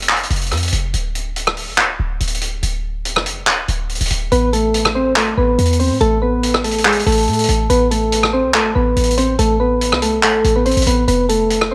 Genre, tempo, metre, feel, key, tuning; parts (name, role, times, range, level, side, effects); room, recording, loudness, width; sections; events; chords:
hip hop, trap; 142 BPM; 4/4; half-time; A minor; A4 = 439 Hz
short 808-style bass; bass; 0.0-11.7 s; D1 to A2; -22 LUFS; equal
vintage drum kit; drums; 0.0-11.7 s; handclaps, hi-hat, rim click; -21 LUFS; equal
soft electric-piano-like synth keys; melody; 4.3-11.7 s; G#3 to C5; -18 LUFS; equal; chorus, tremolo, low-pass filter
light reverb, studio ambience; -16 LUFS; mono
0.0-11.7 A section
break 0.0-4.3
0.0 F5; 0.9 Dm; 4.3 Amadd9; 11.1 F